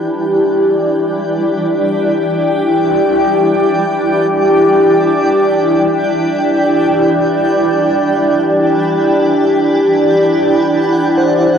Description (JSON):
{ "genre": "ambient", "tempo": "free time", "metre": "none", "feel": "none", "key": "E minor", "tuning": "A4 = 441 Hz", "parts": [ { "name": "granular cloud pad", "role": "sustained chords", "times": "0.0-11.6 s", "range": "E4 to G5", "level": "-11 LUFS", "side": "equal", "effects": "built-in reverb, cassette tape" }, { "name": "organ-like drone", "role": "drone", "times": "0.0-11.6 s", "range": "E3 to D4", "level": "-19 LUFS", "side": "right 2 dB", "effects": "ensemble chorus, built-in reverb, cassette tape" }, { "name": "twinkling granular texture", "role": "texture", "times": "0.0-11.6 s", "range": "F#5 to G5", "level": "-26 LUFS", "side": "right 2 dB", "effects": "built-in reverb, cassette tape" }, { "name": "muted felt-like synth keys", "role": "arpeggios", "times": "11.2-11.6 s", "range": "C5", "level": "-14 LUFS", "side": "right 1 dB", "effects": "chorus, cassette tape" } ], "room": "wet spring reverb, RT60 1.5 s", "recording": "home recording on cassette", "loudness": "-10 LUFS", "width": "side -7 dB against mid", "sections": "0.0-11.6 A section", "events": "fade-in on synth texture 0.0-11.6", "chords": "0.0 Em7; 10.4 Dadd9/E" }